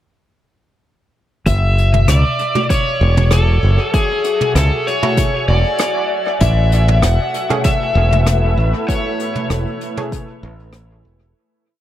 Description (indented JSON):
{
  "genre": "ambient dub",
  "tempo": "97 BPM",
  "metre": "4/4",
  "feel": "straight",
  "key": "F# minor",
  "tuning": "A4 = 445 Hz",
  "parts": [
    { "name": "overdriven slide guitar", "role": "melody", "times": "1.5-9.5 s", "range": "G#4 to F#5", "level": "-19 LUFS", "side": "left 1 dB", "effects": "dub echo" },
    { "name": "granular cloud pad", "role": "sustained chords", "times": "3.4-11.4 s", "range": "A3 to G#5", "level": "-25 LUFS", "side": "left 1 dB", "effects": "built-in reverb" },
    { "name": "modern bright fingered electric bass", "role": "bass", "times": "1.5-11.3 s", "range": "E1 to C#2", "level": "-13 LUFS", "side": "equal", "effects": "none" },
    { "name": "electronic kick drum", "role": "drums", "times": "1.5-10.3 s", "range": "none", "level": "-18 LUFS", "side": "equal", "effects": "overdrive" },
    { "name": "jazz brush drum kit", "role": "drums", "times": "1.5-10.9 s", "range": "hi-hat, rim click, toms", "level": "-23 LUFS", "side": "equal", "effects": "dub echo" },
    { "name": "filtered dub chord stab", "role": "stabs", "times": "2.6-10.2 s", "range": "A3 to G#4", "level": "-25 LUFS", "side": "right 2 dB", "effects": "chorus, dub echo" }
  ],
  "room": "moderate spring reverb, RT60 2.1 s",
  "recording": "none",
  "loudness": "-13 LUFS",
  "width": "side -12 dB against mid",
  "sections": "1.5-11.4 groove",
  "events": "fade-in on ambient pad 1.5-11.4; fade-out 8.1-11.4",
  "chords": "1.5 F#m7; 6.4 Amaj7"
}